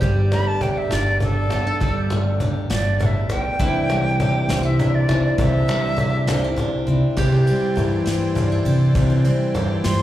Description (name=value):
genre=acoustic folk duo or small band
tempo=67 BPM (dotted quarters)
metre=6/8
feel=straight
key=unclear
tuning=A4 = 440 Hz
part: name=mandolin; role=second line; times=0.0-10.0 s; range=E4 to G4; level=-29 LUFS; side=right 1 dB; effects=slapback echo
part: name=nylon-string guitar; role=accompaniment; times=0.0-10.0 s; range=G2 to E4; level=-24 LUFS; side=left 1 dB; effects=none
part: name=picked swing-style acoustic guitar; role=arpeggios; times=0.0-10.0 s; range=E3 to G4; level=-28 LUFS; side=right 2 dB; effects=slapback echo
part: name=upright bass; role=bass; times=0.0-10.0 s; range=G1 to C3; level=-21 LUFS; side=equal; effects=none
part: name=soft brush drum kit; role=drums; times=0.0-10.0 s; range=hi-hat, kick drum, ride cymbal, snare drum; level=-27 LUFS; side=equal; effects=none
part: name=cajon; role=percussion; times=0.0-10.0 s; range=none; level=-26 LUFS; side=left 2 dB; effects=none
part: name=bright reedy wooden flute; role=melody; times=0.3-6.5, 9.8-10.0 s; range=A4 to C6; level=-26 LUFS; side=right 1 dB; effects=slapback echo
part: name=musette accordion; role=sustained chords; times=7.2-10.0 s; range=E4 to C6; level=-33 LUFS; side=left 1 dB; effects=none
room=light reverb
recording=live gig heard through the venue's PA, club reverb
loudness=-17 LUFS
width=side -13 dB against mid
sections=0.0-7.2 A section; 7.2-10.0 B section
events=flute solo 0.0-7.2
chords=0.0 Gsus2; 3.6 Cadd9